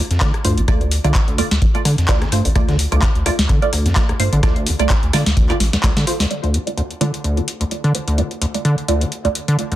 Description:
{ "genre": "acid house", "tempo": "128 BPM", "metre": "4/4", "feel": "swing 55% on 16ths", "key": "D minor", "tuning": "A4 = 440 Hz", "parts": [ { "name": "acid bass, square", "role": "riff", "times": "0.0-9.8 s", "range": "D2 to D3", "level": "-20 LUFS", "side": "equal", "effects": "overdrive, sidechain pumping, ping-pong delay" }, { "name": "round analog bass", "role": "bass", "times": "0.1-5.9 s", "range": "A1 to G2", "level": "-19 LUFS", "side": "equal", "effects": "sidechain pumping" }, { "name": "booming analog drum machine", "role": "drums", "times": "0.1-9.8 s", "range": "handclaps, hi-hat, rim click, snare drum", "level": "-22 LUFS", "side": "left 1 dB", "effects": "none" }, { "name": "dusty soul sampler-style drum kit", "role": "drums", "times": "0.1-6.2 s", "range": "hi-hat, snare drum", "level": "-32 LUFS", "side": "left 1 dB", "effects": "none" }, { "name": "filtered dub chord stab", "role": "stabs", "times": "0.2-9.7 s", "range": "A3 to D5", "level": "-24 LUFS", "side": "right 4 dB", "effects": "phaser, lush chorus, vintage 12-bit sampler grit, ping-pong delay" }, { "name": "electronic kick drum", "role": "drums", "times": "0.2-5.9 s", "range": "none", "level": "-18 LUFS", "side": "equal", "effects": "none" } ], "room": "light reverb", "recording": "dense, heavily limited modern master", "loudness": "-15 LUFS", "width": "side -14 dB against mid", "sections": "0.0-6.3 A section; 6.3-9.8 B section", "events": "filter sweep on acid bass 0.0-6.3; drum fill 5.6-6.3; filter sweep on synth stab 6.3-9.8", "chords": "0.0 Dm" }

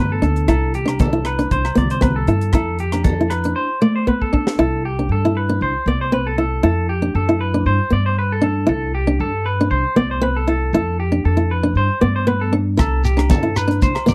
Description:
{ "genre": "highlife guitar band", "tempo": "117 BPM", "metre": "4/4", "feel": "swing 54% on 16ths", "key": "C major", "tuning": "A4 = 440 Hz", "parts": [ { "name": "fingerpicked old ladder-braced acoustic guitar", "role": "accompaniment", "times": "0.0-14.1 s", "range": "A3 to E4", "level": "-22 LUFS", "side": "equal", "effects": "none" }, { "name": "clean electric guitar", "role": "arpeggios", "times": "0.0-14.1 s", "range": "G4 to D5", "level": "-26 LUFS", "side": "equal", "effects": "slapback echo" }, { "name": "upright bass", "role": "bass", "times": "0.0-14.1 s", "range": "C2 to G2", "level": "-22 LUFS", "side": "equal", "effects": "none" }, { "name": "tight funk drum kit", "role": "drums", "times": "0.2-4.6, 12.8-14.1 s", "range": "hi-hat, kick drum, rim click, snare drum", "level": "-21 LUFS", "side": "equal", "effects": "none" }, { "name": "congas", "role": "percussion", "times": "0.2-3.2, 12.8-14.1 s", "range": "none", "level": "-27 LUFS", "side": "equal", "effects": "none" }, { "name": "agogo bells", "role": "percussion", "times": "0.5-3.4, 12.8-14.1 s", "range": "none", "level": "-34 LUFS", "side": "equal", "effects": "none" }, { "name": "shekere", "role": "percussion", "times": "12.8-14.1 s", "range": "none", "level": "-26 LUFS", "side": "equal", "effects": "none" } ], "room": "little or no reverb", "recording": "dry, close 1970s-style studio recording", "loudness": "-18 LUFS", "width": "mono", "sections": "0.0-4.6 A section; 4.6-14.1 B section", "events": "drum fill 4.1-4.6", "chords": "0.5 C; 2.5 F; 3.6 Amadd11; 4.6 C; 6.6 F; 7.7 G; 8.7 C; 10.7 F; 11.8 G; 12.8 C" }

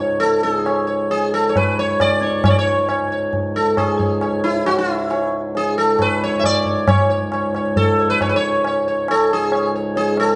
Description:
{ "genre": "indian classical, Hindustani", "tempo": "136 BPM", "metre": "5/4", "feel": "straight", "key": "C# raga bhairavi", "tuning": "A4 = 440 Hz", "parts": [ { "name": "sitar", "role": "melody", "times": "0.0-10.4 s", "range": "E4 to E5", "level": "-20 LUFS", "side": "equal", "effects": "none" }, { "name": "hand-pumped harmonium", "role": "drone", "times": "0.0-10.4 s", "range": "C#2 to G#2", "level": "-27 LUFS", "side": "equal", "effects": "none" }, { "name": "tabla", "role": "percussion", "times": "0.2-10.3 s", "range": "none", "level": "-24 LUFS", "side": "equal", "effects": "none" } ], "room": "wet recital hall reverb, RT60 1.3 s", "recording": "nothing above 10.8 kHz", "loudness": "-18 LUFS", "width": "mono", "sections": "0.0-10.4 A section", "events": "none", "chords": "none" }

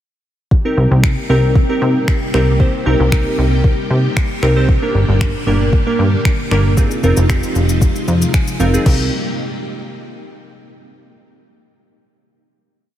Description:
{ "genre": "dance-pop", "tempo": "115 BPM", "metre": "4/4", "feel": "straight", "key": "C minor", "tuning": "A4 = 440 Hz", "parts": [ { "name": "string machine, full ensemble", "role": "sustained chords", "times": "0.5-9.1 s", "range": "Bb2 to G4", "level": "-23 LUFS", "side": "equal", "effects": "ensemble chorus, sidechain pumping" }, { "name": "smooth R&B drum kit", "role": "drums", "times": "0.5-9.0 s", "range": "crash cymbal, finger snaps, kick drum, shaker", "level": "-16 LUFS", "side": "equal", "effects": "none" }, { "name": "glassy digital keys", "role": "accompaniment", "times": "0.6-9.1 s", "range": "Bb3 to Ab5", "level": "-19 LUFS", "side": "right 1 dB", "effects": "chorus, sidechain pumping" }, { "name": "plucky analog bass", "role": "bass", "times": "0.8-9.1 s", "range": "F1 to C3", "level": "-14 LUFS", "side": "equal", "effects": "sidechain pumping" } ], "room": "light reverb", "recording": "none", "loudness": "-12 LUFS", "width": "side -12 dB against mid", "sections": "0.5-8.9 verse; 8.9-10.9 final chord", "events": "synth keys fill 8.1-8.9", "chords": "0.5 Cm7; 4.7 Gm; 6.8 Fm7; 8.9 Cm7" }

